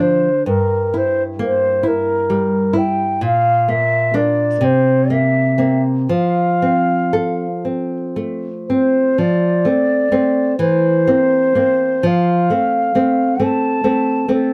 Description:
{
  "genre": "romantic duo for flute and classical guitar",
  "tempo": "38-45 BPM (dotted quarters)",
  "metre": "6/8",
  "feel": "rubato",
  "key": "F major from 3.2 s",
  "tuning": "A4 = 441 Hz",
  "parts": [
    { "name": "mellow concert flute", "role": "melody", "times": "0.0-14.5 s", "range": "A4 to A5", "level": "-19 LUFS", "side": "equal", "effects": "none" },
    { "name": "nylon-string guitar", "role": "accompaniment", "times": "0.0-14.5 s", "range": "G2 to A4", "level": "-19 LUFS", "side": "equal", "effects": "none" }
  ],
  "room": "wet booth ambience, RT60 0.2 s",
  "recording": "none",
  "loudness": "-16 LUFS",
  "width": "mono",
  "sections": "0.0-9.2 A section; 9.2-14.5 B section",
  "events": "none",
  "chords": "0.5 Edim/G; 3.2 Bb; 4.6 C7; 6.1 F; 10.6 C7/E; 12.0 F"
}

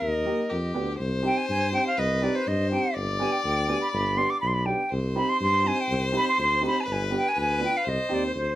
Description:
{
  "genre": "klezmer",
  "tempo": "123 BPM",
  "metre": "2/4",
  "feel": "straight",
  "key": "C harmonic minor",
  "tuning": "A4 = 439 Hz",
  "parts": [
    { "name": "bright concert flute", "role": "melody", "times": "0.0-8.6 s", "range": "C5 to D6", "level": "-26 LUFS", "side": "right 1 dB", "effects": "none" },
    { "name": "rich violin", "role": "second line", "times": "0.0-8.6 s", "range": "G4 to D5", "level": "-30 LUFS", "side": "left 3 dB", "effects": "none" },
    { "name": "mellow tuba", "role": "bass", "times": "0.0-8.6 s", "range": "G1 to G2", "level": "-29 LUFS", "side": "equal", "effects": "none" },
    { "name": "dark upright piano", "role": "accompaniment", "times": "0.3-8.2 s", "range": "Bb3 to G4", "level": "-31 LUFS", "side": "right 2 dB", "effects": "none" }
  ],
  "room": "light reverb",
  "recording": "none",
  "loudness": "-23 LUFS",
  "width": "side -14 dB against mid",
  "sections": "1.0-8.6 A section",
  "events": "none",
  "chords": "0.0 Eb; 0.5 G7; 1.0 Cm; 3.0 G; 4.9 Cm; 6.9 G; 7.8 Cm"
}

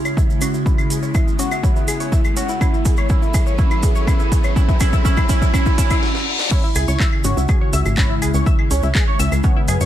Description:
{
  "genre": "melodic techno",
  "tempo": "123 BPM",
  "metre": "4/4",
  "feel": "straight",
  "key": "C# minor",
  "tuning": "A4 = 440 Hz",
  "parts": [
    { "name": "resonant sweep polysynth", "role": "melody", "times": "0.0-9.9 s", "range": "B3 to F#4", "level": "-26 LUFS", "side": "right 1 dB", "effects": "chorus, sidechain pumping, ping-pong delay" },
    { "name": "evolving wavetable pad", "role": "sustained chords", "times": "0.0-9.9 s", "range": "C#3 to A4", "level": "-26 LUFS", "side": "left 1 dB", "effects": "chorus, built-in reverb, phaser, sidechain pumping" },
    { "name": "riser and reverse cymbal", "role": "sound effects", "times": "0.0-6.5 s", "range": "none", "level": "-28 LUFS", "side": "left 1 dB", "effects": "none" },
    { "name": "tight sequenced synth", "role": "arpeggios", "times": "0.1-9.9 s", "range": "C#4 to E6", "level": "-26 LUFS", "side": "equal", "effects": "chorus, sidechain pumping, ping-pong delay" },
    { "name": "house drum kit", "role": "drums", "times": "0.1-9.9 s", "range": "claves, crash cymbal, handclaps, hi-hat, snare drum", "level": "-26 LUFS", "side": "left 1 dB", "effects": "overdrive, sidechain pumping on perc, high-pass filter on perc, sidechain pumping on hats, high-pass filter on hats, high-pass filter on snare, sidechain pumping on cymbals, high-pass filter on cymbals, high-pass filter on room" },
    { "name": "maracas", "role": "percussion", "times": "0.1-9.9 s", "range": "none", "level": "-32 LUFS", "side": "right 5 dB", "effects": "none" },
    { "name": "electronic kick drum", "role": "drums", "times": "0.2-9.5 s", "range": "none", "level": "-16 LUFS", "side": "equal", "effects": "overdrive" },
    { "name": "tight sequencer bass", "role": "bass", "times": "6.8-9.9 s", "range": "G#1 to F#2", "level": "-18 LUFS", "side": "equal", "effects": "sidechain pumping" }
  ],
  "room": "light reverb",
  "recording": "none",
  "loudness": "-15 LUFS",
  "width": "side -12 dB against mid",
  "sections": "0.0-6.5 A section; 6.5-9.9 B section",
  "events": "build-up 0.0-6.5; drum fill 0.0-6.0, 6.0-6.5; riser 0.0-6.0; filter sweep on synth arpeggio sound 0.0-6.5; filter sweep on analog polysynth 0.0-6.5; reverse cymbal 5.5-6.5; stop 6.0-6.5; drop 6.5-9.9",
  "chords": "0.0 C#m; 2.6 F#m; 6.5 C#m"
}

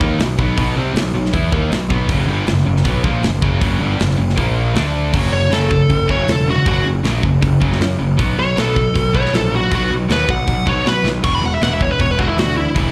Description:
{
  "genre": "heavy metal",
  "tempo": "158 BPM",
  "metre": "4/4",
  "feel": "straight",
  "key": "F# phrygian dominant",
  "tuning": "A4 = 439 Hz",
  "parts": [
    { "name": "distorted electric guitar", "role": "riff", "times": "0.0-12.9 s", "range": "E2 to E4", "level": "-25 LUFS", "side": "equal", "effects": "overdrive, slapback echo" },
    { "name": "tight distorted guitar", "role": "riff", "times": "0.0-12.9 s", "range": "E2 to E4", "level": "-25 LUFS", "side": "equal", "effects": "distortion, slapback echo" },
    { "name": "fuzz picked electric bass", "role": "bass", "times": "0.0-12.9 s", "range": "E1 to B2", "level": "-21 LUFS", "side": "equal", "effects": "overdrive" },
    { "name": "tight metal drum kit", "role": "drums", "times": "0.0-12.9 s", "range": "crash cymbal, hi-hat, kick drum, snare drum", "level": "-24 LUFS", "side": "equal", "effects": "none" },
    { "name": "high-gain lead guitar", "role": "melody", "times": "5.3-12.9 s", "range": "E4 to C#6", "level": "-21 LUFS", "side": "equal", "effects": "distortion, slapback echo" }
  ],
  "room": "small room ambience",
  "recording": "live gig heard through the venue's PA, club reverb",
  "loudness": "-16 LUFS",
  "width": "mono",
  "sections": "0.0-5.1 A section; 5.1-12.9 B section",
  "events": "lead electric guitar solo 5.1-12.9; drum fill 11.1",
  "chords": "0.0 B5; 2.1 F#; 4.4 A#5; 4.8 D5; 5.1 F#5; 8.2 B5; 11.2 E5"
}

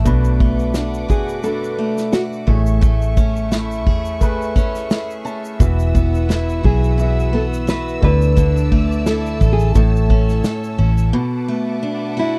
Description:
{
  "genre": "acoustic pop",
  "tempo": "87 BPM",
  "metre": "4/4",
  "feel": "swing 55% on 16ths",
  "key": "A major",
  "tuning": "A4 = 438 Hz",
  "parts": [
    { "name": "picked steel-string acoustic guitar", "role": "accompaniment", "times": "0.0-12.4 s", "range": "A2 to A4", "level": "-24 LUFS", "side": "equal", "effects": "none" },
    { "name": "warm upright piano", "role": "accompaniment", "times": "0.0-11.2 s", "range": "A3 to A5", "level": "-32 LUFS", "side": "equal", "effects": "none" },
    { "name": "clear studio string section", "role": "sustained chords", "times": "0.0-12.4 s", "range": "A3 to E6", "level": "-36 LUFS", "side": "equal", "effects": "none" },
    { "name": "vintage muted fingered electric bass", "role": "bass", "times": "0.0-11.1 s", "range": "E1 to E2", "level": "-20 LUFS", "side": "equal", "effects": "none" },
    { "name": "unplugged drum kit", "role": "drums", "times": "0.1-11.1 s", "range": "kick drum, shaker, snare drum", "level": "-20 LUFS", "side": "equal", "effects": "none" },
    { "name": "nylon-string guitar", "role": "melody", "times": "1.1-12.4 s", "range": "E4 to B4", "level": "-25 LUFS", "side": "equal", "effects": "none" }
  ],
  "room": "little or no reverb",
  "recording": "dry, close 1970s-style studio recording",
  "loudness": "-17 LUFS",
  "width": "mono",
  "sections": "0.0-11.1 A section; 11.1-12.4 A section",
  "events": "upright piano fill 4.6-5.6",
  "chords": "0.1 Bm7; 2.5 Amaj7; 5.6 Esus2; 8.0 Dsus2; 9.8 A; 11.1 Bm7"
}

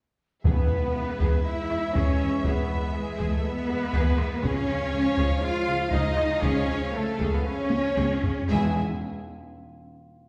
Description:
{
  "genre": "cinematic, epic orchestral film score",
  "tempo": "119 BPM",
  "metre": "4/4",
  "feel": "uneven beats",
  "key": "E major",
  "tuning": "A4 = 440 Hz",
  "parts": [
    { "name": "rich symphonic violin section", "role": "melody", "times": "0.4-8.8 s", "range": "E5 to E#5", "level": "-43 LUFS", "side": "equal", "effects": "none" },
    { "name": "rich symphonic viola section", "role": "accompaniment", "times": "0.4-8.8 s", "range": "E4 to G#4", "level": "-40 LUFS", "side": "equal", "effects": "none" },
    { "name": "mellow trombone section", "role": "sustained chords", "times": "0.4-8.7 s", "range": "E3 to B3", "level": "-39 LUFS", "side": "equal", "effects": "none" },
    { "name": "timpani", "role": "percussion", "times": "0.4-1.2, 8.5-8.8 s", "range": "E2", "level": "-33 LUFS", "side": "equal", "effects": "none" },
    { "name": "mellow flute section", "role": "second line", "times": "0.5-8.8 s", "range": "G#4 to G#5", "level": "-38 LUFS", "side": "equal", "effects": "none" },
    { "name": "warm symphonic violin section", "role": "second line", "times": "0.5-8.8 s", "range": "G#4 to G#5", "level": "-41 LUFS", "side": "equal", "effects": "none" },
    { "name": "warm French horn section", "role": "sustained chords", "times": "0.5-8.7 s", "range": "B2 to E#4", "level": "-39 LUFS", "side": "equal", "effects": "none" },
    { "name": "dark trumpet section", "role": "stabs", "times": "0.5-8.7 s", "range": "G#4 to E#5", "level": "-38 LUFS", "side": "equal", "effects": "none" },
    { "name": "rich symphonic double bass section", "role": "bass", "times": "0.5-8.8 s", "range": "C#2 to E2", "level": "-35 LUFS", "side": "equal", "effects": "none" },
    { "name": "warm studio cello section", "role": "bass", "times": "0.5-8.8 s", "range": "G#3 to E#4", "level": "-31 LUFS", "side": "equal", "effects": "none" },
    { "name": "taiko ensemble", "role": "drums", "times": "0.5-8.5 s", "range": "none", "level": "-30 LUFS", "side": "equal", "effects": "none" }
  ],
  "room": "wet scoring stage reverb, RT60 1.6 s",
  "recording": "heard from further back in the room",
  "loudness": "-26 LUFS",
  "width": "mono",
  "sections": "0.5-8.5 A section; 8.5-10.3 B section",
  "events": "break 0.0-0.5; drum fill 0.0-0.5, 7.7-8.5",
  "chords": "0.5 E; 4.4 C#; 8.5 E"
}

